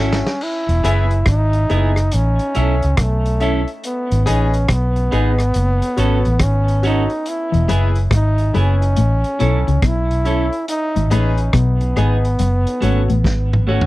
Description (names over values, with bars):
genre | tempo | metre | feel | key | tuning
roots reggae | 70 BPM | 4/4 | swing 64% on 16ths | E major | A4 = 441 Hz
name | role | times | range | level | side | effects
warm trombone | melody | 0.0-13.7 s | A3 to E4 | -22 LUFS | equal | tape echo
clean electric guitar | accompaniment | 0.0-13.9 s | A3 to A4 | -26 LUFS | right 3 dB | tape echo
warm grand piano | stabs | 0.0-13.9 s | D#4 to E5 | -25 LUFS | left 4 dB | none
vintage muted fingered electric bass | bass | 0.0-13.9 s | E1 to C#2 | -16 LUFS | equal | none
vintage drum kit | drums | 0.1-13.9 s | crash cymbal, hi-hat, kick drum, rim click, snare drum, toms | -21 LUFS | equal | none
mellow electric guitar | riff | 7.5-13.5 s | E2 to C#3 | -21 LUFS | left 4 dB | spring reverb
room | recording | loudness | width
little or no reverb | dry, close 1970s-style studio recording | -14 LUFS | side -17 dB against mid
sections
0.4-13.9 A section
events
drum fill 0.0-0.4, 13.2-13.9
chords
0.4 E; 2.1 A; 3.8 G#m; 5.5 F#m; 7.3 E; 9.0 A; 10.7 G#m; 12.4 F#m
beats
| 0.40 1.26 2.12 2.97 | 3.83 4.68 5.54 6.40 | 7.25 8.11 8.96 9.82 | 10.68 11.53 12.39 13.24